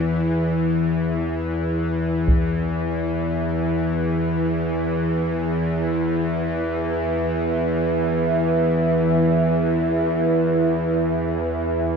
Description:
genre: dark ambient drone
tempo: free time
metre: none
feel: none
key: unclear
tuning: A4 = 440 Hz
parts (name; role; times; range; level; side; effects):
- bowed-like drone; drone; 0.0-12.0 s; E2 to E3; -20 LUFS; left 1 dB; built-in reverb
- deep dark ambient pad; sustained chords; 3.3-12.0 s; E4 to E5; -24 LUFS; right 2 dB; chorus, built-in reverb
- solo taiko drums; percussion; 2.3-2.5 s; none; -20 LUFS; equal; low-pass filter on perc
room: wet huge ambient reverb, RT60 7.7 s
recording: dark, warm production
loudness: -19 LUFS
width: side -5 dB against mid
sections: 0.0-12.0 A section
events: none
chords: 0.0 E5

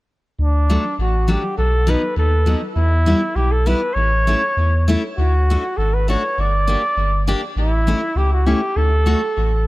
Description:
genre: alpine folk, alpine dance band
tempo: 100 BPM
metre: 2/4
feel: straight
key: D major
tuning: A4 = 439 Hz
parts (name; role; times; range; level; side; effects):
- clear flugelhorn; melody; 0.4-9.7 s; D4 to D5; -21 LUFS; right 1 dB; tape echo
- warm sub bass; bass; 0.4-9.7 s; G1 to E2; -17 LUFS; equal; none
- picked steel-string acoustic guitar; accompaniment; 0.7-9.2 s; F#3 to G4; -23 LUFS; left 2 dB; tape echo
room: little or no reverb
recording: echo-heavy mix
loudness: -15 LUFS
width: side -19 dB against mid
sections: 0.4-9.7 A section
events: none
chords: 0.4 D; 1.6 B; 2.8 Em; 4.0 A; 5.2 D; 6.4 Gm; 7.6 A; 8.8 D

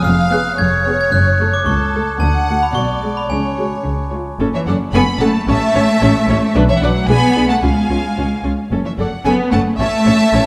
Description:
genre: cinematic, playful, whimsical film cue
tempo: 111 BPM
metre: 2/4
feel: straight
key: F# minor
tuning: A4 = 442 Hz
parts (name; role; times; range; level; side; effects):
- glockenspiel with brass mallets; melody; 0.0-4.1 s; G#5 to G#6; -22 LUFS; equal; none
- rich studio violin section; second line; 0.0-10.5 s; A4 to G#5; -23 LUFS; equal; none
- clear studio double bass section; bass; 0.1-10.4 s; E#1 to D2; -21 LUFS; equal; none
- rich studio cello section; bass; 0.1-10.5 s; C#2 to B3; -21 LUFS; equal; none
- rich studio violin section; melody; 0.3-10.5 s; C#5 to B5; -27 LUFS; equal; none
- rich studio viola section; accompaniment; 0.3-10.4 s; G#3 to C#5; -24 LUFS; equal; none
room: moderate concert hall reverb, RT60 2.4 s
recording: dark, warm production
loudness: -16 LUFS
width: mono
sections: 0.0-4.4 A section; 4.4-10.5 B section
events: none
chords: 0.1 C#7/E#; 1.1 F#m; 2.2 D; 2.8 G#dim/B; 3.3 C#sus4; 3.9 C#; 4.4 F#m; 5.5 A; 6.6 Bm; 7.1 G#dim/B; 7.6 C#; 8.7 F#m; 9.8 A

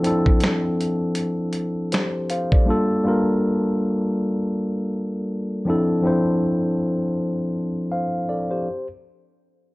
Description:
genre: lo-fi hip hop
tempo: 80 BPM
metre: 4/4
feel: swing 58% on 16ths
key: D minor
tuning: A4 = 440 Hz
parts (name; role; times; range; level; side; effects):
- mellow tine electric piano; accompaniment; 0.0-8.9 s; F3 to F5; -20 LUFS; equal; cassette tape, low-pass filter
- dusty soul sampler-style drum kit; drums; 0.0-2.7 s; finger snaps, hi-hat, kick drum, snare drum; -19 LUFS; equal; none
room: moderate studio reverb, RT60 0.6 s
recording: cassette tape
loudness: -20 LUFS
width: side -21 dB against mid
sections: 0.0-8.7 A section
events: none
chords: 0.0 Dm7/F; 2.7 Gm9; 5.7 Dm7/F

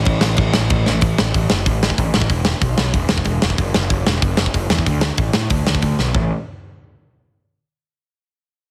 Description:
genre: punk rock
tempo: 187 BPM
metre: 4/4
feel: straight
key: unclear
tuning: A4 = 440 Hz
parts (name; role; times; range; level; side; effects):
- fuzz picked electric bass; bass; 0.0-6.3 s; E1 to A2; -21 LUFS; equal; overdrive
- big rock drum kit; drums; 0.1-6.2 s; crash cymbal, hi-hat, kick drum, snare drum; -20 LUFS; equal; none
room: little or no reverb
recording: heavily compressed radio sound, multiband compression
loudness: -18 LUFS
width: mono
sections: 0.0-1.0 A section; 1.0-6.2 B section; 6.2-7.4 C section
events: drum fill 0.9, 6.0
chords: none

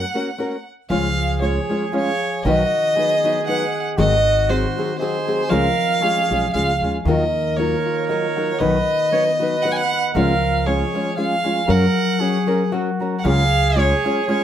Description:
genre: mexican folk, mariachi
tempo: 117 BPM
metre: 3/4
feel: swing 54% on 8ths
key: unclear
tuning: A4 = 440 Hz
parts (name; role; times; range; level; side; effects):
- rich violin; melody; 0.0-14.4 s; B#4 to G#5; -21 LUFS; right 1 dB; slapback echo
- nylon-string guitar; accompaniment; 0.0-14.4 s; G#2 to C#5; -23 LUFS; left 1 dB; none
- upright bass; bass; 0.0-13.9 s; G#1 to F#2; -22 LUFS; right 1 dB; none
- mellow trumpet; second line; 0.9-14.4 s; F#4 to C#5; -26 LUFS; right 6 dB; none
- concert harp; arpeggios; 0.9-14.4 s; D#3 to A#5; -25 LUFS; left 6 dB; none
room: light reverb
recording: none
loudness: -17 LUFS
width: side -10 dB against mid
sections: 0.9-13.2 A section; 13.2-14.4 A section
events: none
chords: 0.0 F#; 0.9 C#; 2.4 B; 4.0 G#7; 5.5 C#; 7.1 D#madd9; 8.6 B; 10.1 C#; 11.7 F#; 13.2 C#

